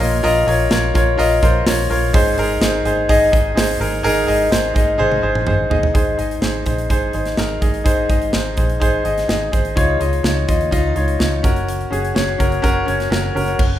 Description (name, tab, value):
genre	piano-driven pop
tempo	126 BPM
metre	4/4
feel	straight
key	unclear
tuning	A4 = 440 Hz
part	clear concert grand piano	accompaniment	0.0-13.6 s	Ab2 to Eb5	-17 LUFS	left 1 dB	none
part	vintage muted fingered electric bass	bass	0.0-13.8 s	Gb1 to Eb2	-22 LUFS	equal	none
part	modern studio drum kit	drums	0.0-13.7 s	crash cymbal, hi-hat, kick drum, snare drum, toms	-19 LUFS	right 1 dB	none
room	moderate recital hall reverb, RT60 1.5 s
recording	recorded in a church or concert hall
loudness	-14 LUFS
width	side -12 dB against mid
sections	0.0-6.0 A section; 6.0-13.6 B section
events	drum fill 5.0-6.0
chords	0.0 Bbm; 2.1 Ab; 9.8 Dbadd9; 11.4 Gb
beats	| 0.24 0.71 1.19 1.66 | 2.14 2.62 3.09 3.57 | 4.05 4.52 5.00 5.48 | 5.95 6.43 6.91 7.38 | 7.86 8.34 8.82 9.29 | 9.77 10.25 10.73 11.21 | 11.68 12.16 12.64 13.12 | 13.59